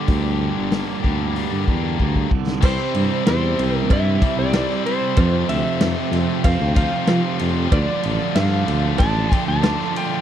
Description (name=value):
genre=classic rock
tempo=94 BPM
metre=4/4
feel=straight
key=unclear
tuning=A4 = 440 Hz
part: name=distorted electric guitar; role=riff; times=0.0-10.2 s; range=F2 to E4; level=-25 LUFS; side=right 12 dB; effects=distortion
part: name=tight distorted guitar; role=riff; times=0.0-10.2 s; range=F2 to G4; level=-26 LUFS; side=left 14 dB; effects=distortion
part: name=mellow tuba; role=bass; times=0.1-9.7 s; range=G1 to F3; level=-21 LUFS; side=equal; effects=none
part: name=vintage drum kit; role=drums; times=0.1-10.1 s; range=crash cymbal, hi-hat, kick drum, ride cymbal, snare drum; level=-21 LUFS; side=equal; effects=none
part: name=tonewheel organ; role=sustained chords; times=2.6-10.2 s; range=G3 to D5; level=-35 LUFS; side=left 1 dB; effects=none
part: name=cowbell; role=percussion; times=2.6-9.8 s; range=none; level=-30 LUFS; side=right 9 dB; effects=none
part: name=electric slide guitar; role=melody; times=2.7-10.2 s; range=C5 to A5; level=-25 LUFS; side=equal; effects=none
room=little or no reverb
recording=dry, close 1970s-style studio recording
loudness=-17 LUFS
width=side -10 dB against mid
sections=0.0-2.6 A section; 2.6-10.2 B section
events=drum fill 2.0-2.6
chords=0.0 Gm; 2.6 C; 5.2 F; 7.7 Dm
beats=| 0.07 0.71 1.35 1.99 | 2.62 3.26 3.90 4.53 | 5.17 5.81 6.44 7.08 | 7.71 8.35 8.99 9.62